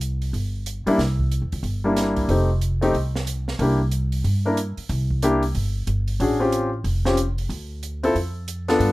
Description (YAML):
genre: jazz, small-group swing and bop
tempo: 184 BPM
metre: 4/4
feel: swing 63% on 8ths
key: C mixolydian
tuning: A4 = 440 Hz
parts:
  - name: upright bass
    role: bass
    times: 0.0-8.9 s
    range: F1 to G2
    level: -23 LUFS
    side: equal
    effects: none
  - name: open jazz drum kit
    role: drums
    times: 0.0-8.9 s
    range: hi-hat, kick drum, snare drum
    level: -32 LUFS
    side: right 2 dB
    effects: none
  - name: warm grand piano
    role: accompaniment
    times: 0.9-8.9 s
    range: G3 to Bb4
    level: -20 LUFS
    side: left 1 dB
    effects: none
room: light reverb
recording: none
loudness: -20 LUFS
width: side -19 dB against mid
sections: 0.0-8.9 A section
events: none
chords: 0.0 C7; 2.3 F7; 3.6 C7; 6.2 A7alt; 7.5 Dm